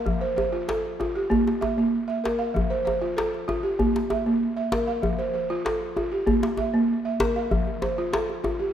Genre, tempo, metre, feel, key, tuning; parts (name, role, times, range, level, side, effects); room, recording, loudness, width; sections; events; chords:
west african traditional, West African string and xylophone music; 97 BPM; 4/4; straight; F major; A4 = 440 Hz
balafon; arpeggios; 0.0-8.7 s; F3 to F5; -24 LUFS; right 1 dB
djembe; percussion; 0.1-8.6 s; -28 LUFS; left 2 dB
wet recital hall reverb, RT60 1.7 s; -22 LUFS; side -10 dB against mid
0.0-8.7 A section
0.1 F; 1.3 Bb5; 2.5 F; 3.8 Bb5; 5.0 F; 6.3 Bb5; 7.5 F